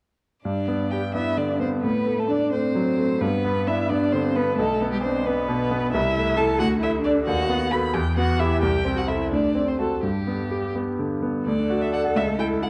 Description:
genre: quick classical-period movement for piano trio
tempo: 83-91 BPM (dotted quarters)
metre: 6/8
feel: rubato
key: G major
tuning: A4 = 441 Hz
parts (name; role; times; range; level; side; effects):
- warm violin; melody; 0.4-12.7 s; G4 to B5; -30 LUFS; equal; none
- warm cello; second line; 0.5-12.7 s; G3 to B4; -30 LUFS; equal; none
- bright grand piano; accompaniment; 0.5-12.7 s; B1 to F#5; -25 LUFS; equal; none
room: moderate recital hall reverb, RT60 1.5 s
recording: dark, warm production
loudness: -23 LUFS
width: mono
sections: 0.5-11.5 A section; 11.5-12.7 B section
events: none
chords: 0.5 G; 1.8 D7/A; 3.2 G; 4.6 Bm7; 5.9 Am/C; 6.6 D5; 7.3 B7/D#; 7.9 Em; 8.6 Am7/C; 9.3 D7; 10.0 G; 11.5 D; 12.2 A/C#

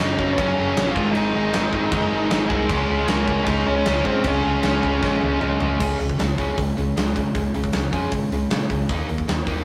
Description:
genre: punk rock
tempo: 155 BPM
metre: 4/4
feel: straight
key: Db major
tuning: A4 = 443 Hz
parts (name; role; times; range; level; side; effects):
- dark smooth lead guitar; melody; 0.0-5.4 s; Ab3 to F5; -27 LUFS; equal; overdrive
- distorted electric guitar; riff; 0.0-9.6 s; Gb2 to Eb4; -26 LUFS; equal; overdrive
- distorted electric guitar; riff; 0.0-5.8 s; Gb2 to F4; -27 LUFS; equal; distortion
- raw garage guitar; riff; 0.0-5.8 s; none; barely audible; none; none
- picked electric bass; bass; 0.0-9.6 s; Gb1 to Bb2; -30 LUFS; equal; none
- big rock drum kit; drums; 0.0-9.6 s; crash cymbal, hi-hat, kick drum, snare drum, toms; -28 LUFS; equal; none
room: moderate studio reverb, RT60 0.6 s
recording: rough rehearsal-room recording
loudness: -21 LUFS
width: mono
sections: 0.0-5.8 A section; 5.8-9.6 B section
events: drum fill 5.0-5.8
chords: 0.0 Gb; 1.0 Ab; 2.7 Db; 5.8 Db5; 8.9 Eb5

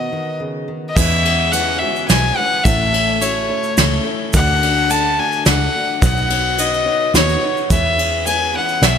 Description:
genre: indie folk with a building arrangement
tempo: 107 BPM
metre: 3/4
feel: straight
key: E major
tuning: A4 = 442 Hz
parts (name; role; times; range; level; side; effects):
- rich fiddle; melody; 0.0-9.0 s; C#5 to A5; -18 LUFS; left 2 dB; slapback echo
- fingerpicked steel-string acoustic guitar; accompaniment; 0.0-1.0 s; B2 to F#4; -27 LUFS; equal; slapback echo
- picked twelve-string acoustic guitar; accompaniment; 1.0-9.0 s; E2 to C#5; -24 LUFS; left 6 dB; slapback echo
- warm upright piano; accompaniment; 1.0-9.0 s; A1 to D5; -28 LUFS; right 2 dB; slapback echo
- fingered electric bass; bass; 1.0-9.0 s; A1 to E2; -20 LUFS; right 1 dB; none
- soft brush drum kit; drums; 1.0-9.0 s; crash cymbal, kick drum, ride cymbal, snare drum; -19 LUFS; equal; none
- egg shaker; percussion; 1.0-9.0 s; none; -28 LUFS; right 6 dB; none
room: moderate concert hall reverb, RT60 1.8 s, small room ambience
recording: big arena sound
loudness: -14 LUFS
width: side -7 dB against mid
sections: 1.0-9.0 A section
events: none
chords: 0.0 B; 1.0 E6; 2.6 A; 4.3 D; 6.0 Badd9; 7.7 E6

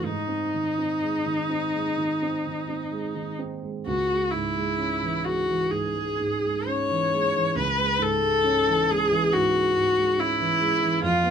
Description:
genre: classical, romantic duo for viola and grand piano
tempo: 59-72 BPM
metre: 4/4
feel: rubato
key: C# minor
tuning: A4 = 440 Hz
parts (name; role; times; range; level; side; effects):
- clear viola; melody; 0.0-11.3 s; D#4 to C#5; -23 LUFS; left 2 dB; none
- dark grand piano; accompaniment; 0.0-11.3 s; C#2 to C#4; -28 LUFS; right 4 dB; none
room: light reverb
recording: close, detailed microphones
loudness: -22 LUFS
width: side -7 dB against mid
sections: 0.0-11.3 A section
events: none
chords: 0.0 G#; 3.9 C#m

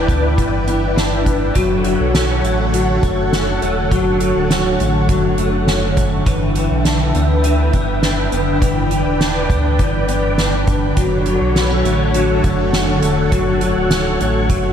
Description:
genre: dream pop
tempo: 102 BPM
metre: 4/4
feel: straight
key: D major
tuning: A4 = 440 Hz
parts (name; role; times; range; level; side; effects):
- string machine, violas; sustained chords; 0.0-14.7 s; D3 to G5; -19 LUFS; equal; phaser, ensemble chorus
- electric guitar at the edge of break-up; arpeggios; 0.0-14.7 s; E3 to D4; -19 LUFS; left 2 dB; ensemble chorus, digital delay
- sub bass with octave; bass; 0.0-14.7 s; D1 to D2; -20 LUFS; equal; none
- soft-mallet drum kit; drums; 0.1-14.6 s; hi-hat, kick drum, snare drum; -20 LUFS; right 1 dB; none
room: moderate shimmer reverb, RT60 4.2 s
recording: none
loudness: -14 LUFS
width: side -8 dB against mid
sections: 0.0-14.7 A section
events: none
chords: 0.0 G6; 1.6 Dmaj7; 6.3 G6; 11.0 Dmaj7

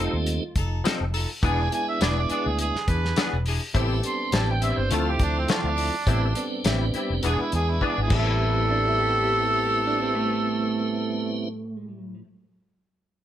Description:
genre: straight-eighth soul blues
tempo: 103 BPM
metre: 4/4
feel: swing 53% on 16ths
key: A minor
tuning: A4 = 440 Hz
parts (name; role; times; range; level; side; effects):
- electric guitar through a small old amp; second line; 0.0-0.5, 8.7-12.2 s; A3 to G4; -30 LUFS; right 3 dB; spring reverb
- tonewheel organ; accompaniment; 0.0-11.5 s; F3 to E4; -30 LUFS; right 2 dB; slow rotary speaker, overdrive
- direct-recorded clean electric guitar; stabs; 0.0-12.3 s; A2 to A4; -30 LUFS; left 4 dB; ensemble chorus
- vintage muted fingered electric bass; bass; 0.0-12.2 s; E1 to E2; -26 LUFS; equal; none
- warm soul drum kit; drums; 0.3-8.2 s; crash cymbal, hi-hat, kick drum, snare drum; -27 LUFS; left 1 dB; none
- warm horn section; sustained chords; 0.6-11.5 s; D4 to D5; -34 LUFS; left 2 dB; none
- mellow harmonica; melody; 1.5-11.5 s; C4 to C6; -27 LUFS; right 2 dB; overdrive
room: light reverb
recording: none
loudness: -22 LUFS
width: side -11 dB against mid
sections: 0.0-8.4 A section; 8.4-10.7 B section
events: drum fill 7.8-8.4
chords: 0.0 F7; 1.4 E7; 3.7 Am7; 4.9 Dm7; 6.1 Am7; 7.2 E7; 8.1 Am7

